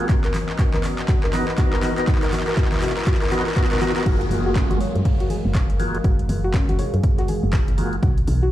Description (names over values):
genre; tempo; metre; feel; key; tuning
deep house; 121 BPM; 4/4; swing 60% on 16ths; F# major; A4 = 443 Hz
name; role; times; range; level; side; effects
dark analog pad; sustained chords; 0.0-8.5 s; F#3 to E#5; -31 LUFS; right 1 dB; chorus, sidechain pumping
percussive tonewheel organ; stabs; 0.0-8.0 s; A#3 to A#4; -27 LUFS; equal; overdrive, chorus vibrato, slow rotary speaker, sidechain pumping, tape echo
punchy analog drum machine; drums; 0.0-8.4 s; crash cymbal, handclaps, hi-hat; -30 LUFS; equal; none
riser and downlifter; sound effects; 0.0-8.0 s; none; -32 LUFS; right 2 dB; none
soft round pluck; arpeggios; 0.1-8.5 s; C#4 to C#5; -28 LUFS; left 2 dB; chorus, sidechain pumping, tape echo
electronic kick drum; drums; 0.1-8.1 s; none; -20 LUFS; equal; overdrive
congas and bongos; percussion; 0.3-8.4 s; none; -30 LUFS; left 3 dB; none
woody FM bass; bass; 4.1-8.5 s; F#1 to F#2; -23 LUFS; equal; sidechain pumping
deep reggae drum kit; drums; 4.1-8.4 s; hi-hat, shaker, snare drum; -41 LUFS; equal; none
room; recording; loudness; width
light reverb; played on a big sound system in a bare room, large studio reverb; -18 LUFS; side -13 dB against mid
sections
0.0-4.1 A section; 4.1-8.5 B section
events
build-up 0.0-4.1; drum fill 0.0-4.1; riser 0.0-4.1; drop 4.1-8.5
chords
0.1 Bmaj7; 4.1 F#maj9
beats
| 0.09 0.59 1.09 1.58 | 2.08 2.57 3.07 3.56 | 4.06 4.56 5.05 5.55 | 6.04 6.54 7.04 7.53 | 8.03